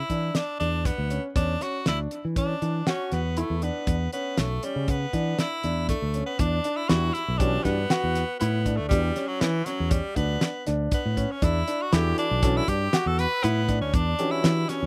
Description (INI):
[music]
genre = progressive instrumental, band music in an uneven meter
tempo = 119 BPM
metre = 5/4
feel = straight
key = E dorian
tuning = A4 = 440 Hz
[part]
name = edgy tenor saxophone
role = melody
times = 0.0-14.9 s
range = E3 to B4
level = -32 LUFS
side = equal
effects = slapback echo
[part]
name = warm concert grand piano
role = arpeggios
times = 0.1-14.9 s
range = C#4 to F#4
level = -34 LUFS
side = equal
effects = slapback echo
[part]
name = fingered electric bass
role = bass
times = 0.1-14.9 s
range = B1 to E3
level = -29 LUFS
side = equal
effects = none
[part]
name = damped 70s drum kit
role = drums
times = 0.1-14.8 s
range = hi-hat, kick drum, snare drum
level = -28 LUFS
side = equal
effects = none
[part]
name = warm grand piano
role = accompaniment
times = 6.9-14.9 s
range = E3 to A4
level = -32 LUFS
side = equal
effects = slapback echo
[sound]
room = little or no reverb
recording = recorded outdoors, with no room sound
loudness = -26 LUFS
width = mono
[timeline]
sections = 0.0-6.4 A section; 6.4-14.9 B section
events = none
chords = 0.0 E5; 1.4 Dmaj13; 3.9 E5; 6.4 Em9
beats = 0.35 0.86 | 1.36 1.86 2.37 2.87 3.37 | 3.88 4.38 4.88 5.39 5.89 | 6.39 6.90 7.40 7.90 8.41 | 8.91 9.41 9.92 10.42 10.92 | 11.43 11.93 12.43 12.93 13.44 | 13.94 14.44